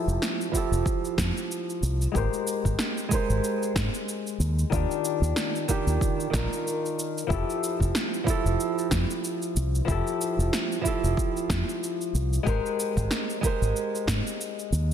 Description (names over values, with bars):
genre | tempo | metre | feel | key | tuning
sunset chillout | 93 BPM | 4/4 | swing 56% on 16ths | F major | A4 = 439 Hz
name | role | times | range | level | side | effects
flamenco guitar | accompaniment | 0.0-14.9 s | Eb3 to C5 | -28 LUFS | moving between left 9 dB and right 6 dB | auto-pan, low-pass filter, digital delay
fingered electric bass with an envelope filter | bass | 0.1-14.9 s | F1 to Ab2 | -25 LUFS | equal | none
electronic cabasa and snare drum | drums | 0.1-14.9 s | none | -32 LUFS | equal | overdrive
electronic kick drum | drums | 0.5-14.2 s | none | -29 LUFS | equal | overdrive
room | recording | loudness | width
light reverb, digital ambience | dense, heavily limited modern master | -24 LUFS | side -9 dB against mid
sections
0.0-14.9 A section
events
filter sweep on nylon-string guitar 0.0-14.9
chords
0.0 Fmaj9; 2.1 Abmaj9; 4.7 Ebmaj9; 7.3 Fmaj9; 12.5 Abmaj9